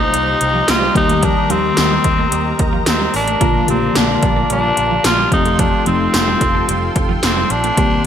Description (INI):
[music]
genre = 1980s-style pop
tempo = 110 BPM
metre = 4/4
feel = straight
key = F mixolydian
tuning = A4 = 438 Hz
[part]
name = breathy tenor saxophone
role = melody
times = 0.0-8.1 s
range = C4 to F4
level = -17 LUFS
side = equal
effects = ping-pong delay
[part]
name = mellow FM electric piano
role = accompaniment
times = 0.0-8.1 s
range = C3 to G4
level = -20 LUFS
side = left 4 dB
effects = chorus
[part]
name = brassy analog pad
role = sustained chords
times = 0.0-8.1 s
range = Eb3 to C6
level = -23 LUFS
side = equal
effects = chorus
[part]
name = twelve-string electric guitar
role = riff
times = 0.0-7.9 s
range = F3 to C4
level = -26 LUFS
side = right 7 dB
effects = analog chorus, ping-pong delay
[part]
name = fretless electric bass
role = bass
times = 0.0-8.0 s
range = F1 to Eb2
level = -22 LUFS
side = right 1 dB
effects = analog chorus
[part]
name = 80s electronic pad drums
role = drums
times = 0.1-7.9 s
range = hi-hat, kick drum, snare drum, tambourine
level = -17 LUFS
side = right 1 dB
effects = overdrive, gated reverb
[sound]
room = moderate lush hall reverb, RT60 1.6 s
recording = bright 1980s-style digital production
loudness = -13 LUFS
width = side -9 dB against mid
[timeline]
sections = 0.0-8.1 A section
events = none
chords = 0.0 Cm7; 1.0 Eb; 3.4 Bb; 5.3 Fadd9